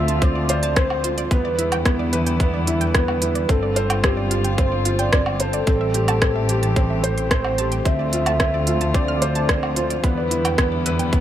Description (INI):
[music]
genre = piano and strings electronica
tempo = 110 BPM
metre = 4/4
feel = straight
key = D dorian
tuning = A4 = 441 Hz
[part]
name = warm velvety synth lead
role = melody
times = 0.0-11.1 s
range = G4 to E5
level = -25 LUFS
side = right 1 dB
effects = chorus
[part]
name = muted string quartet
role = sustained chords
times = 0.0-11.2 s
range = D3 to G4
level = -28 LUFS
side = left 1 dB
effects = sidechain pumping
[part]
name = felt-muted upright piano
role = riff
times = 0.0-11.2 s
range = B3 to C5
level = -26 LUFS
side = equal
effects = digital delay
[part]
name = rich chamber double bass section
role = bass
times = 0.0-11.2 s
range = G1 to E2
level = -23 LUFS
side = equal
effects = sidechain pumping
[part]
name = wide unison pluck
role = arpeggios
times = 0.1-11.2 s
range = B4 to G6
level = -32 LUFS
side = right 3 dB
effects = sidechain pumping, digital delay
[part]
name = organic electronic drum kit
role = drums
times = 0.1-11.2 s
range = hi-hat, rim click, woodblock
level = -24 LUFS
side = right 1 dB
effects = overdrive
[part]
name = electronic kick drum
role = drums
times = 0.2-11.2 s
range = none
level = -19 LUFS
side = equal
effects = overdrive
[sound]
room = light reverb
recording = none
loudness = -17 LUFS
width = side -11 dB against mid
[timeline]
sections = 0.0-11.2 A section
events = none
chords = 0.0 Dm7; 1.3 Em7; 3.5 G7sus4; 5.7 Am7; 7.9 Dm7; 10.0 Em7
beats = 0.22 0.77 | 1.31 1.86 2.40 2.95 | 3.49 4.04 4.58 5.13 | 5.67 6.22 6.76 7.31 | 7.86 8.40 8.95 9.49 | 10.04 10.58 11.13